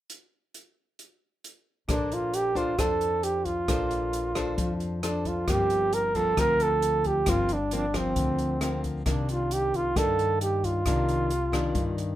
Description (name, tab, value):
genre	bossa nova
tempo	134 BPM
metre	4/4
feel	straight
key	Bb major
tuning	A4 = 439 Hz
part	open jazz drum kit	drums	0.1-12.1 s	hi-hat, kick drum, rim click	-32 LUFS	equal	none
part	breathy flugelhorn	melody	1.9-12.0 s	C4 to Bb4	-26 LUFS	right 2 dB	none
part	nylon-string guitar	accompaniment	1.9-12.2 s	G2 to C5	-31 LUFS	left 3 dB	none
part	upright bass	bass	1.9-12.2 s	G1 to G2	-33 LUFS	left 1 dB	none
room	moderate studio reverb, RT60 0.6 s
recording	rough home demo mix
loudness	-24 LUFS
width	side -13 dB against mid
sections	0.1-1.9 A section; 1.9-12.2 B section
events	none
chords	0.1 N.C.; 1.9 Bbmaj9; 5.5 Gm11; 9.1 Cm9